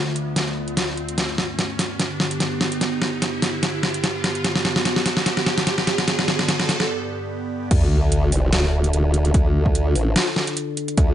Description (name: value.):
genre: heavy wobble dubstep.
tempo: 147 BPM.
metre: 4/4.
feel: swing 54% on 16ths, half-time.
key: D dorian.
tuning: A4 = 440 Hz.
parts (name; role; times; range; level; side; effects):
evolving wavetable pad; sustained chords; 0.0-11.1 s; D2 to A4; -27 LUFS; equal; phaser, built-in reverb, sidechain pumping.
riser and sub drop; sound effects; 0.1-9.3 s; none; -27 LUFS; equal; none.
dubstep drum kit; drums; 0.2-11.1 s; crash cymbal, hi-hat, snare drum; -22 LUFS; equal; none.
formant-sweep wobble bass; bass; 7.7-11.1 s; A1 to D2; -19 LUFS; equal; chorus, overdrive.
electronic kick drum; drums; 7.7-11.1 s; none; -18 LUFS; equal; overdrive.
room: light reverb.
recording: nothing above 10.5 kHz.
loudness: -19 LUFS.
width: side -11 dB against mid.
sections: 0.0-7.7 A section; 7.7-11.1 B section.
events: build-up 0.0-7.7; drum fill 0.0-6.9; riser 0.1-6.9; break 6.9-7.7; drop 7.7-11.1; impact 7.7-9.3.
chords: 0.0 Dm; 1.2 G; 7.7 Dm.